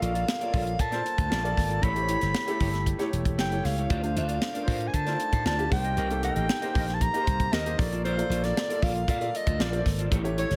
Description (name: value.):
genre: polished 1980s jazz-funk pop.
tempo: 116 BPM.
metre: 4/4.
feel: straight.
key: unclear.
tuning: A4 = 439 Hz.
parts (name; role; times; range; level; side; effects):
breathy soprano saxophone; melody; 0.0-10.6 s; C5 to B5; -33 LUFS; equal; none.
warm concert grand piano; accompaniment; 0.0-10.6 s; A3 to F5; -36 LUFS; equal; subtle chorus.
mellow electric guitar; riff; 0.0-10.6 s; E4 to Eb5; -38 LUFS; equal; ensemble chorus.
slap bass; bass; 0.0-10.6 s; E1 to D3; -32 LUFS; equal; none.
tight funk drum kit; drums; 0.0-10.6 s; hi-hat, kick drum, snare drum; -32 LUFS; equal; gated reverb.
room: light reverb, small room ambience.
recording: none.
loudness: -27 LUFS.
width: mono.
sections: 0.0-10.6 A section.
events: none.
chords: 0.0 Bbmaj7; 1.8 A7; 3.9 Dm7; 5.7 Cm7; 7.8 Bbmaj7.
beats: 0.28 0.80 1.31 | 1.83 2.35 2.87 3.39 | 3.90 4.42 4.94 5.46 | 5.98 6.50 7.01 7.53 | 8.05 8.56 9.08 9.60 | 10.12.